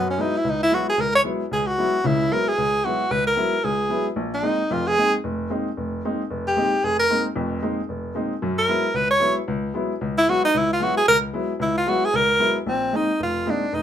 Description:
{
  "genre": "jazz",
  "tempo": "226 BPM",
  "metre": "4/4",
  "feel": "swing 61% on 8ths",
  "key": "unclear",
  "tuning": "A4 = 440 Hz",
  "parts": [
    { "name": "clear tenor saxophone", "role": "melody", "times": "0.0-13.8 s", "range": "C4 to Db5", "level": "-19 LUFS", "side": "right 1 dB", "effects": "none" },
    { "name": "warm baby grand piano", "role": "accompaniment", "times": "0.0-13.8 s", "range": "F1 to Fb4", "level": "-25 LUFS", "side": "left 2 dB", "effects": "none" }
  ],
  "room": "moderate club ambience, RT60 0.5 s",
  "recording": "none",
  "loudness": "-19 LUFS",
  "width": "side -10 dB against mid",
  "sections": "0.0-12.7 A section; 12.7-13.8 B section",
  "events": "tenor saxophone solo 0.0-12.7",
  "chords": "0.0 Gb9sus4; 4.2 Bb9sus4; 8.4 Gb9sus4; 12.7 Bb9sus4"
}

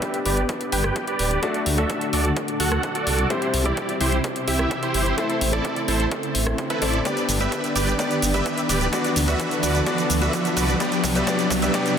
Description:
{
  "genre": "EDM, festival progressive house",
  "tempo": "128 BPM",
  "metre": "4/4",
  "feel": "straight",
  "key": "G major",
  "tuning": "A4 = 440 Hz",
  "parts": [
    { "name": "warm grand piano", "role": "accompaniment", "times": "0.0-12.0 s", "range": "G3 to D5", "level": "-27 LUFS", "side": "left 4 dB", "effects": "sidechain pumping, tape echo" },
    { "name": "lush unison pad", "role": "sustained chords", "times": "0.3-12.0 s", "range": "C3 to A4", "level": "-32 LUFS", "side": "right 1 dB", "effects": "chorus, phaser, sidechain pumping" },
    { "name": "dense compressed supersaw", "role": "riff", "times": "0.0-11.9 s", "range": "E4 to G5", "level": "-25 LUFS", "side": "right 2 dB", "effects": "sidechain pumping, low-pass filter, tape echo" },
    { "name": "big-room dance drum kit", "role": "drums", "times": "0.0-12.0 s", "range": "hi-hat, rim click, shaker", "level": "-29 LUFS", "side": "equal", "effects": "soft clipping on snare" },
    { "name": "electronic kick drum", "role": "drums", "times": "0.0-11.8 s", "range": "none", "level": "-32 LUFS", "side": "right 1 dB", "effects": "overdrive, high-pass filter on kick, high-pass filter on room" },
    { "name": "riser", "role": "sound effects", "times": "1.2-12.0 s", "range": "none", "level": "-29 LUFS", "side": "right 1 dB", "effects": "none" },
    { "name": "detuned saw bass", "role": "bass", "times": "0.3-11.7 s", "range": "D1 to D2", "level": "-25 LUFS", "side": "right 1 dB", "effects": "sidechain pumping" }
  ],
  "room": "moderate huge ambient reverb, RT60 4.0 s",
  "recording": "dense, heavily limited modern master",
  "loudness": "-20 LUFS",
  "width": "side -8 dB against mid",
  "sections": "0.0-12.0 A section",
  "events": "build-up 0.0-12.0; filter sweep on supersaw synth 0.0-12.0; filter sweep on analog synth pad 0.0-12.0; riser 1.2-12.0; drum fill 7.1-12.0",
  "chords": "0.0 G; 1.4 D; 3.3 C; 5.2 Am; 7.1 G; 8.9 D; 10.8 C"
}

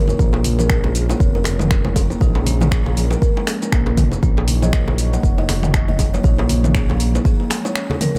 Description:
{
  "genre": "afro house",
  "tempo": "119 BPM",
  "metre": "4/4",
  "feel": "swing 58% on 16ths",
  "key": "Bb minor",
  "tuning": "A4 = 443 Hz",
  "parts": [
    { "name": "buzzing kalimba", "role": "melody", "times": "0.0-8.2 s", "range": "F4 to Gb5", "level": "-31 LUFS", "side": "equal", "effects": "tape echo" },
    { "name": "warm analog pad", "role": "sustained chords", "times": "0.0-8.2 s", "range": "Gb3 to Db5", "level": "-34 LUFS", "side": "equal", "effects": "none" },
    { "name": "smooth synth bass", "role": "bass", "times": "0.0-7.2 s", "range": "F1 to Bb1", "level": "-22 LUFS", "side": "equal", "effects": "tube saturation, sidechain pumping" },
    { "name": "marimba with medium hard mallets", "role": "arpeggios", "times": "0.1-8.2 s", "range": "F3 to Bb4", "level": "-29 LUFS", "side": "equal", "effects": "sidechain pumping, tape echo" },
    { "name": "deep house drum kit", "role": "drums", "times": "0.1-8.2 s", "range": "finger snaps, hi-hat, shaker, toms", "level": "-26 LUFS", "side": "equal", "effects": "none" },
    { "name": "bongos", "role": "percussion", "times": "0.1-8.2 s", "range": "none", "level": "-31 LUFS", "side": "equal", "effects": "dub echo" },
    { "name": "congas", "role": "percussion", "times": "0.1-8.2 s", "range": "none", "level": "-28 LUFS", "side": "equal", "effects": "none" },
    { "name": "electronic kick drum", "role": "drums", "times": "0.2-7.4 s", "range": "none", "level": "-19 LUFS", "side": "equal", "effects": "none" }
  ],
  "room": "studio reverb",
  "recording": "echo-heavy mix",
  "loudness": "-17 LUFS",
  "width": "mono",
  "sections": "0.0-8.2 A section",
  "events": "none",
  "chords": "0.2 Bbm7; 4.2 Ebm7"
}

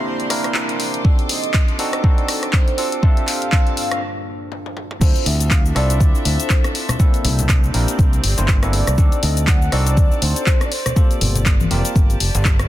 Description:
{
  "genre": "deep house",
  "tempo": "121 BPM",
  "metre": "4/4",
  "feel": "swing 57% on 16ths",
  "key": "D minor",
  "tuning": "A4 = 441 Hz",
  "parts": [
    { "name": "mellow horn-like synth lead", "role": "melody", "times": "0.0-11.5 s", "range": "Bb4 to F#5", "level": "-28 LUFS", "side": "equal", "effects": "lush chorus, ping-pong delay" },
    { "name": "deep dark ambient pad", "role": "sustained chords", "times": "0.0-5.0 s", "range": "G2 to A5", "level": "-33 LUFS", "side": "right 2 dB", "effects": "chorus, built-in reverb, sidechain pumping" },
    { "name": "bell-like tine electric piano", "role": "stabs", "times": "0.0-12.2 s", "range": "Bb3 to C5", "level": "-26 LUFS", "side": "equal", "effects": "low-pass filter, ping-pong delay" },
    { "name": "rich chamber string section", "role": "texture", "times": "0.0-12.7 s", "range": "C4 to D6", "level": "-31 LUFS", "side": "right 1 dB", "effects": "sidechain pumping" },
    { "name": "warm chamber violin section", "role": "texture", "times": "0.0-4.0 s", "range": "C5 to C6", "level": "-34 LUFS", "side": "equal", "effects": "none" },
    { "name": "deep house drum kit", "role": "drums", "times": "0.2-12.7 s", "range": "cabasa, crash cymbal, handclaps, hi-hat, rim click, toms", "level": "-23 LUFS", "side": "left 1 dB", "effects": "high-pass filter on perc, high-pass filter on hats, high-pass filter on snare, high-pass filter on toms, high-pass filter on cymbals, high-pass filter on room" },
    { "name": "electronic kick drum", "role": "drums", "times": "1.0-12.6 s", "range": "none", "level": "-14 LUFS", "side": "equal", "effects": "none" },
    { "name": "modern bright fingered electric bass", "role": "bass", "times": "5.0-12.7 s", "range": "F1 to D2", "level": "-19 LUFS", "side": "equal", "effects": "sidechain pumping" },
    { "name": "congas", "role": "percussion", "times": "6.9-7.5, 10.9-11.7 s", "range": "none", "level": "-25 LUFS", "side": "left 3 dB", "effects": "none" }
  ],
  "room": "little or no reverb",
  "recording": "dense, heavily limited modern master",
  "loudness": "-15 LUFS",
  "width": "side -14 dB against mid",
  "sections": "0.0-5.0 A section; 5.0-12.7 B section",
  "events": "build-up 0.0-5.0; filter sweep on soft synth lead 0.0-5.0; break 4.0-5.0; drum fill 4.5-5.0; drop 5.0-12.7",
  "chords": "0.0 C13; 1.0 D7b9; 2.8 Gm11; 5.0 Dm9; 7.0 C13; 9.0 D7b9; 10.7 Gm11"
}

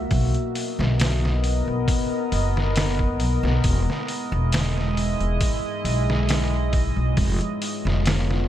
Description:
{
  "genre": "trip hop",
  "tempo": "68 BPM",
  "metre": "4/4",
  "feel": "straight",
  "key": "unclear",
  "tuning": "A4 = 439 Hz",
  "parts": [
    { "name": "deep dark ambient pad", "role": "sustained chords", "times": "0.0-8.5 s", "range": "G#3 to D#5", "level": "-26 LUFS", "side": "equal", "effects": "chorus, built-in reverb" },
    { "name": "upright bass", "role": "bass", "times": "0.0-8.5 s", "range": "E1 to B1", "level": "-23 LUFS", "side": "equal", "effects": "tube saturation" },
    { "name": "trip hop sampler-style drum kit", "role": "drums", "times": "0.1-8.5 s", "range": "hi-hat, kick drum, snare drum", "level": "-25 LUFS", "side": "equal", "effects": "none" }
  ],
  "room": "light reverb",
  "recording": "none",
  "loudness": "-20 LUFS",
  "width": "side -12 dB against mid",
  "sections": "0.0-8.5 A section",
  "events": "none",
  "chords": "0.1 Bmaj7; 3.6 Emaj7; 7.2 C#7/E#"
}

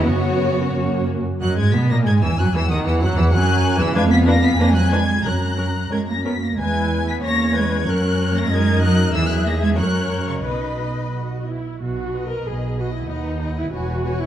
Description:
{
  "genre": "quick classical-period movement for string orchestra",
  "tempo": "86-97 BPM",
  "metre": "2/4",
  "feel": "rubato",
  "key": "B major",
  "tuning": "A4 = 440 Hz",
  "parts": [
    { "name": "rich chamber violin section", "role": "melody", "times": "0.0-14.3 s", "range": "C#5 to B6", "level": "-26 LUFS", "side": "left 4 dB", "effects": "none" },
    { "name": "rich chamber violin section", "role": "second line", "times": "0.0-14.3 s", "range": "F#4 to A#5", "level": "-29 LUFS", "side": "left 4 dB", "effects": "none" },
    { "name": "warm chamber viola section", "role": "accompaniment", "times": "0.0-14.3 s", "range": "D#3 to C#5", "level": "-25 LUFS", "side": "equal", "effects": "none" },
    { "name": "rich chamber cello section", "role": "bass", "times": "0.0-14.3 s", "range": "D#2 to B3", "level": "-23 LUFS", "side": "right 2 dB", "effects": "none" },
    { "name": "warm chamber double bass section", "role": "bass", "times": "0.0-14.3 s", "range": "E1 to B2", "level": "-20 LUFS", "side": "right 1 dB", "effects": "none" }
  ],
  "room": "wet recital hall reverb, RT60 1.5 s",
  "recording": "dark, warm production",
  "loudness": "-17 LUFS",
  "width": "side -11 dB against mid",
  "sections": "0.0-1.4 A section; 1.4-11.8 B section; 11.8-14.3 C section",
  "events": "none",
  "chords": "0.0 F#sus4; 0.7 F#; 1.4 B/F#; 2.7 Esus2; 3.3 Eadd9; 3.9 Fdim7; 5.2 F#; 6.6 E; 7.2 C#m/E; 7.9 F#; 8.5 D#m/F#; 9.1 E; 9.8 F#; 10.4 B; 13.1 B/D#; 13.7 C#m7/E"
}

